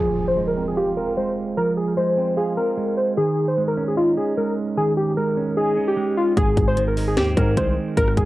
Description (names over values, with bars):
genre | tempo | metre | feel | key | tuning
hip hop, trap | 150 BPM | 4/4 | half-time | F minor | A4 = 439 Hz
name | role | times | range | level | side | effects
warbly lo-fi synth keys | melody | 0.0-8.3 s | F4 to C5 | -21 LUFS | left 1 dB | chorus, low-pass filter, cassette tape, plate reverb
clean electric guitar | accompaniment | 0.0-8.3 s | Ab2 to F4 | -24 LUFS | right 3 dB | low-pass filter, cassette tape
impact | sound effects | 0.0-1.6 s | none | -32 LUFS | left 1 dB | none
distorted 808-style bass | bass | 6.4-8.3 s | Ab1 to Ab2 | -23 LUFS | left 1 dB | distortion
trap drum kit | drums | 6.4-8.3 s | finger snaps, hi-hat, kick drum, rim click, snare drum | -22 LUFS | left 1 dB | cassette tape
room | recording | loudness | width
moderate studio reverb, RT60 0.6 s | home recording on cassette | -18 LUFS | side -16 dB against mid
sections
0.0-8.3 A section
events
impact 0.0-1.6; filter sweep 0.0-6.4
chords
0.0 Fm; 3.2 Dbsus2; 6.4 Ab